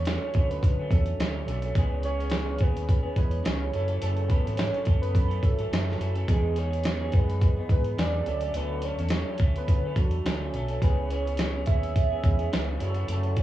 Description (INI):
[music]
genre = indie pop, bedroom pop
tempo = 106 BPM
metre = 4/4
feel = swing 55% on 16ths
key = unclear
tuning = A4 = 442 Hz
[part]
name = warbly nostalgic lead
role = melody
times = 0.0-13.4 s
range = G#4 to E5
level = -34 LUFS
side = right 2 dB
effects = analog chorus, cassette tape, analog delay
[part]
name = barky tine electric piano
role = accompaniment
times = 0.0-13.4 s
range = E3 to C#5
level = -38 LUFS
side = right 6 dB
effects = overdrive
[part]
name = electric guitar through a small old amp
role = accompaniment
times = 0.0-13.4 s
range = F#2 to A4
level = -35 LUFS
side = left 2 dB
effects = wide subtle chorus, warbly pitch drift
[part]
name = vintage muted fingered electric bass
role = bass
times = 0.0-13.4 s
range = F#1 to D3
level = -29 LUFS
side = equal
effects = none
[part]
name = dusty soul sampler-style drum kit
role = drums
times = 0.1-13.4 s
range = hi-hat, kick drum, snare drum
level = -25 LUFS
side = equal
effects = none
[sound]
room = light reverb, digital ambience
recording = home recording on cassette, small room ambience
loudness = -24 LUFS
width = side -14 dB against mid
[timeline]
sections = 0.0-13.4 A section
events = none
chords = 0.0 Dmaj7; 1.8 C#m7; 3.7 F#m7; 6.3 Emaj7; 8.3 Dmaj7; 10.8 C#m7; 12.8 F#m7